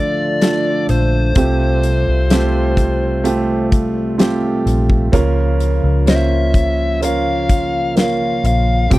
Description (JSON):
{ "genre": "pop ballad", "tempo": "64 BPM", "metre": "4/4", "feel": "straight", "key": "unclear", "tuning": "A4 = 440 Hz", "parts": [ { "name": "dark smooth lead guitar", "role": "melody", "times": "0.0-9.0 s", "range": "C5 to G5", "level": "-20 LUFS", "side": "left 2 dB", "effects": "overdrive" }, { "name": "warm concert grand piano", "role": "accompaniment", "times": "0.0-9.0 s", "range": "C3 to C5", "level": "-19 LUFS", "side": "right 4 dB", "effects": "none" }, { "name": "mellow tonewheel organ", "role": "sustained chords", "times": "0.0-9.0 s", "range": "C3 to F4", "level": "-23 LUFS", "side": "left 1 dB", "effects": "chorus vibrato, slow rotary speaker" }, { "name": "vintage muted fingered electric bass", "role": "bass", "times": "0.0-9.0 s", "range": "Bb1 to D2", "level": "-17 LUFS", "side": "equal", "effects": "none" }, { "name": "huge arena drum kit", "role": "drums", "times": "0.4-9.0 s", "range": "hi-hat, kick drum, snare drum", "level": "-16 LUFS", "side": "left 1 dB", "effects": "none" } ], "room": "little or no reverb", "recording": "dry, close 1970s-style studio recording", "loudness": "-13 LUFS", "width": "side -17 dB against mid", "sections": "0.0-9.0 A section", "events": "none", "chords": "0.0 Dm; 1.4 Fadd9/C; 5.1 Bbm/Db" }